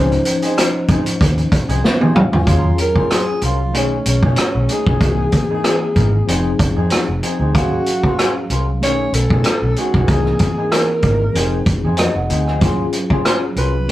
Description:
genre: lush 1970s-style soul.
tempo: 95 BPM.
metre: 4/4.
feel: swing 54% on 16ths.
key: Eb dorian.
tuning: A4 = 439 Hz.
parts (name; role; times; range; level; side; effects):
tine electric piano; accompaniment; 0.0-13.9 s; D#3 to G#5; -22 LUFS; left 2 dB; medium stereo tremolo.
electric guitar through a small old amp; riff; 0.0-13.9 s; D#3 to Bb4; -25 LUFS; equal; none.
vintage muted fingered electric bass; bass; 0.0-13.9 s; F1 to B2; -19 LUFS; equal; none.
celesta; texture; 0.0-4.0 s; C5 to Bb5; -30 LUFS; left 2 dB; none.
vintage drum kit; drums; 0.1-13.9 s; hi-hat, kick drum, rim click, snare drum, toms; -17 LUFS; equal; none.
breathy alto saxophone; melody; 2.5-13.9 s; C#4 to C#5; -21 LUFS; equal; none.
room: moderate small room reverb, RT60 0.5 s.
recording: rough rehearsal-room recording.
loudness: -14 LUFS.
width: side -15 dB against mid.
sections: 0.0-2.5 A section; 2.5-13.9 B section.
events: drum fill 1.8-2.5; tine electric piano fill 11.7-12.6.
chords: 0.0 Dbmaj9; 2.5 Ebm11; 3.7 B13; 5.0 C7alt; 6.3 Fm7; 7.5 Ebm11; 8.8 B13; 10.1 C7alt; 11.4 Fm7; 12.6 Ebm11.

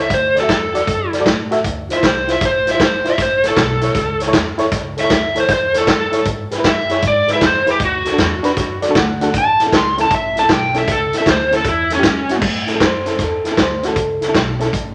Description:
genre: electric blues shuffle.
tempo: 156 BPM.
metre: 4/4.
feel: swing 66% on 8ths.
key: A mixolydian.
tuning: A4 = 440 Hz.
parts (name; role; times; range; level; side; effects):
overdriven slide guitar; melody; 0.0-12.4 s; C#4 to C6; -19 LUFS; equal; none.
reed electric piano; accompaniment; 0.0-14.7 s; C#4 to F#5; -23 LUFS; equal; overdrive.
upright bass; bass; 0.0-14.9 s; G1 to A2; -29 LUFS; equal; none.
vintage drum kit; drums; 0.1-14.9 s; crash cymbal, hi-hat, kick drum, snare drum; -20 LUFS; equal; none.
room: moderate large studio reverb, RT60 1.1 s.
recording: none.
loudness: -16 LUFS.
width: mono.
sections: 0.0-12.4 A section; 12.4-14.9 A section.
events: electric slide guitar solo 0.0-12.4; reed electric piano fill 8.6-9.3.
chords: 0.1 D; 1.6 Dm7; 3.2 A; 6.3 E; 7.8 D; 9.3 A.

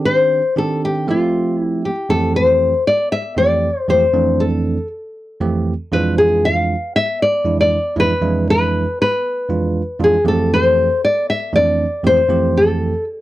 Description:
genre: jazz.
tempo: 118 BPM.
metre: 4/4.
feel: straight.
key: unclear.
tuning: A4 = 439 Hz.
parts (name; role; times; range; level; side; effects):
bell-like tine electric piano; accompaniment; 0.0-12.9 s; F2 to E5; -18 LUFS; right 3 dB; none.
nylon-string guitar; melody; 0.1-13.0 s; F4 to F5; -16 LUFS; left 2 dB; slapback echo.
room: little or no reverb.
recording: dry, close 1970s-style studio recording.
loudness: -14 LUFS.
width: side -15 dB against mid.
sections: 0.0-2.1 A section; 2.1-13.2 B section.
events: none.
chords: 0.0 Cmadd9; 1.1 G13sus4; 2.1 Am7/F; 5.9 E7b9/F; 10.3 Am7/F.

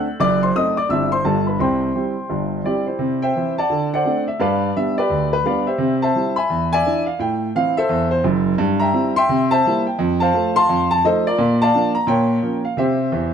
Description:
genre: jazz, stride piano.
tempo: 172 BPM.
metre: 4/4.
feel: swing 62% on 8ths.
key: C major, F major from 8.6 s.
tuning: A4 = 442 Hz.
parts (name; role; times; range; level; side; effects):
warm concert grand piano; solo; 0.0-13.3 s; F#1 to E6; -16 LUFS; equal; none.
room: moderate recital hall reverb, RT60 1.4 s.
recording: close, detailed microphones.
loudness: -16 LUFS.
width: side -7 dB against mid.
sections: 0.0-3.0 A section; 3.0-13.3 B section.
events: grand piano fill 13.1.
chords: 0.2 F#dim7; 0.9 C/G; 1.2 G7; 1.6 C; 3.7 D7; 4.4 G7; 5.8 C; 6.5 E7; 7.2 Am; 8.6 C7/G; 9.3 C7; 10.0 F; 10.7 F7; 11.4 Bb; 12.1 Bbm; 12.8 C.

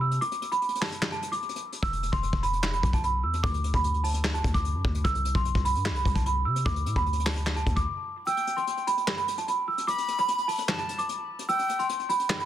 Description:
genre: hip hop, trap.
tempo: 149 BPM.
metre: 4/4.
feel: half-time.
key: unclear.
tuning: A4 = 440 Hz.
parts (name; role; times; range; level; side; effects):
worn celesta; melody; 0.0-12.5 s; A5 to E6; -28 LUFS; right 2 dB; low-pass filter, tape echo.
warm 808-style bass; bass; 0.0-7.9 s; E1 to C3; -28 LUFS; equal; none.
vintage brush drum kit; drums; 0.1-12.5 s; handclaps, hi-hat, kick drum, snare drum; -30 LUFS; left 1 dB; none.
breathy silver concert flute; second line; 8.3-11.9 s; G5 to B5; -32 LUFS; left 2 dB; tape echo.
room: light reverb, small room ambience.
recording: dense, heavily limited modern master.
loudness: -25 LUFS.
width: side -11 dB against mid.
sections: 0.0-12.5 A section.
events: break 0.2-1.8, 7.9-8.3; kick muted 8.3-12.5.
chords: 0.2 N.C.; 1.8 E5; 3.4 D5; 5.0 C5; 6.7 D5; 8.3 N.C..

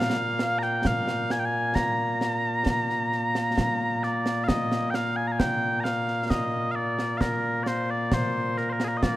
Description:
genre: scottish traditional, Scottish pipe music.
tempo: 66 BPM.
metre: 3/4.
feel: straight.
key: Bb mixolydian.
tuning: A4 = 440 Hz.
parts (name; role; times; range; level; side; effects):
mellow small bagpipes; melody; 0.0-9.2 s; Bb2 to Bb5; -25 LUFS; equal; none.
concert snare drum and concert bass drum; drums; 0.4-9.2 s; none; -29 LUFS; right 1 dB; none.
room: moderate lush hall reverb, RT60 2.2 s.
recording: rough home demo mix.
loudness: -24 LUFS.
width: side -15 dB against mid.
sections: 0.0-4.5 A section; 4.5-9.2 B section.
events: none.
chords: none.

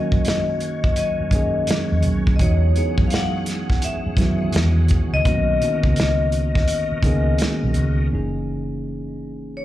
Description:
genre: R&B, neo-soul.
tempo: 84 BPM.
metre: 4/4.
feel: swing 63% on 16ths.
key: unclear.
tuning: A4 = 440 Hz.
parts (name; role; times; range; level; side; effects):
vibraphone with medium hard mallets; melody; 0.0-9.6 s; C#5 to F#5; -25 LUFS; left 4 dB; slapback echo, tape echo.
tine electric piano; accompaniment; 0.0-9.6 s; D3 to G#4; -25 LUFS; right 1 dB; slapback echo.
bright tonewheel organ; sustained chords; 0.0-8.1 s; B2 to F#5; -34 LUFS; equal; fast rotary speaker, chorus vibrato.
vintage muted fingered electric bass; bass; 0.1-9.6 s; F#1 to F#2; -21 LUFS; equal; none.
warm soul drum kit; drums; 0.1-8.0 s; hi-hat, kick drum, snare drum; -21 LUFS; equal; none.
room: small room ambience.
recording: live gig heard through the venue's PA, club reverb.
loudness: -17 LUFS.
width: side -14 dB against mid.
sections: 0.0-8.1 A section; 8.1-9.6 B section.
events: none.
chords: 0.0 D#m7; 2.4 Emaj9; 5.2 Bmaj7; 8.1 F#13.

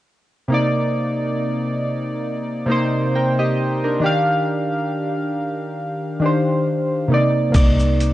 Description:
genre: lo-fi hip hop.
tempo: 68 BPM.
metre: 4/4.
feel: swing 58% on 16ths.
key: C minor.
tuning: A4 = 441 Hz.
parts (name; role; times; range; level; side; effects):
warm analog keys; accompaniment; 0.5-8.1 s; C3 to G5; -18 LUFS; equal; chorus, cassette tape, low-pass filter.
trip hop sampler-style drum kit; drums; 7.5-8.1 s; crash cymbal, hi-hat, kick drum, shaker; -17 LUFS; equal; none.
vintage muted fingered electric bass; bass; 7.6-8.1 s; C2; -18 LUFS; equal; none.
room: moderate studio reverb, RT60 0.6 s.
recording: cassette tape, nothing above 10.3 kHz.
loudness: -17 LUFS.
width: side -15 dB against mid.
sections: 0.5-7.5 A section.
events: none.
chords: 0.5 Cm9; 4.0 Ebmaj9; 7.1 Cm9.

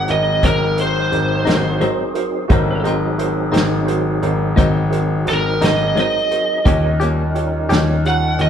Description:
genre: slow blues.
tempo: 58 BPM (dotted quarters).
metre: 12/8.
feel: straight.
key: unclear.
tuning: A4 = 440 Hz.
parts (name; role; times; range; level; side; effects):
lead guitar through a small cranked amp; melody; 0.0-8.5 s; Bb4 to Gb5; -20 LUFS; right 2 dB; overdrive.
tonewheel organ; sustained chords; 0.0-8.5 s; Gb3 to Bb4; -26 LUFS; equal; slow rotary speaker, overdrive, chorus vibrato.
bright grand piano; bass; 0.0-8.5 s; Ab1 to Eb2; -19 LUFS; left 2 dB; none.
warm upright piano; accompaniment; 0.1-8.5 s; F4 to Eb5; -24 LUFS; right 6 dB; none.
vintage drum kit; drums; 0.1-8.5 s; hi-hat, kick drum, snare drum; -19 LUFS; equal; none.
clean electric guitar; accompaniment; 0.4-7.9 s; Ab2 to G4; -22 LUFS; left 3 dB; tremolo.
room: light reverb.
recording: band playing live in one room.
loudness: -15 LUFS.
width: side -8 dB against mid.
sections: 0.0-8.5 A section.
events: none.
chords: 0.0 Ab7; 6.6 Eb7.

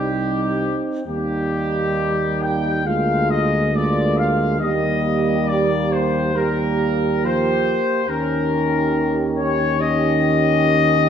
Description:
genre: classical, hymn-like piece for brass band.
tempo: 68 BPM.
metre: 4/4.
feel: rubato.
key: unclear.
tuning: A4 = 440 Hz.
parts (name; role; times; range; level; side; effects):
clear trumpet section; melody; 0.0-11.1 s; G4 to G5; -21 LUFS; left 5 dB; none.
warm French horn section; second line; 0.0-11.1 s; Eb4 to G4; -26 LUFS; right 7 dB; none.
warm euphonium; accompaniment; 0.0-11.1 s; Eb3 to Ab3; -24 LUFS; right 4 dB; none.
warm trombone section; accompaniment; 0.0-11.1 s; Bb3 to Db4; -26 LUFS; right 1 dB; none.
mellow tuba; bass; 0.0-11.1 s; C2 to Eb2; -24 LUFS; equal; none.
room: moderate scoring stage reverb, RT60 1.6 s.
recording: none.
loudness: -17 LUFS.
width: side -8 dB against mid.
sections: 0.0-11.1 A section.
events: none.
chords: 0.0 Cm; 1.1 Eb; 2.9 Bb7/D; 4.6 Eb; 8.1 Eb7.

